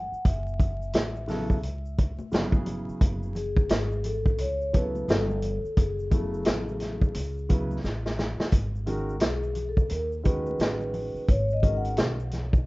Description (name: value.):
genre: hip hop, jazz-hop.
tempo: 87 BPM.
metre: 4/4.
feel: swing 62% on 16ths.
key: G# phrygian.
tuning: A4 = 438 Hz.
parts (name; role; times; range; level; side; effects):
vibraphone with soft mallets; melody; 0.0-11.9 s; G#4 to F#5; -32 LUFS; left 1 dB; analog delay.
upright bass; bass; 0.0-12.6 s; F#1 to D#2; -31 LUFS; equal; none.
tube shaker and congas; percussion; 0.1-12.7 s; none; -42 LUFS; left 1 dB; none.
vintage drum kit; drums; 0.2-12.7 s; hi-hat, kick drum, snare drum; -25 LUFS; equal; none.
dark baby grand piano; accompaniment; 1.3-12.2 s; C#3 to B4; -32 LUFS; right 1 dB; none.
room: light reverb.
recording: rough home demo mix, vinyl crackle, nothing above 7.7 kHz.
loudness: -24 LUFS.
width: side -22 dB against mid.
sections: 0.0-8.5 A section; 8.5-12.7 B section.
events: drum fill 7.8-8.5; vibraphone solo 8.5-12.7.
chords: 0.0 F#m11; 8.5 G#m11.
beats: | 0.25 0.94 1.63 2.32 | 3.01 3.70 4.39 5.08 | 5.77 6.46 7.15 7.84 | 8.53 9.22 9.91 10.60 | 11.29 11.98.